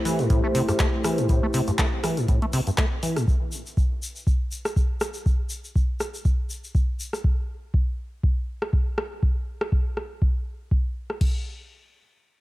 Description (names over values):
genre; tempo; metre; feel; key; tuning
acid house; 121 BPM; 4/4; swing 55% on 16ths; unclear; A4 = 440 Hz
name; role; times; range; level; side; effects
dark analog pad; sustained chords; 0.0-3.2 s; A3 to C5; -27 LUFS; left 1 dB; chorus, sidechain pumping
acid bass, saw; riff; 0.1-3.3 s; G2 to A3; -26 LUFS; equal; tube saturation, analog chorus, sidechain pumping, digital delay
punchy analog drum machine; drums; 0.1-11.3 s; crash cymbal, handclaps, hi-hat, rim click; -30 LUFS; equal; overdrive
tube shaker; percussion; 0.1-7.2 s; none; -37 LUFS; left 3 dB; none
electronic kick drum; drums; 0.3-11.3 s; none; -22 LUFS; equal; none
room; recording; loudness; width
light reverb; none; -22 LUFS; side -18 dB against mid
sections
0.0-11.2 A section; 11.2-12.4 B section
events
filter sweep on acid bass 0.0-3.3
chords
0.0 Am7; 3.3 N.C.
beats
0.30 0.80 | 1.29 1.79 2.28 2.78 | 3.28 3.77 4.27 4.76 | 5.26 5.75 6.25 6.75 | 7.24 7.74 8.23 8.73 | 9.23 9.72 10.22 10.71 | 11.21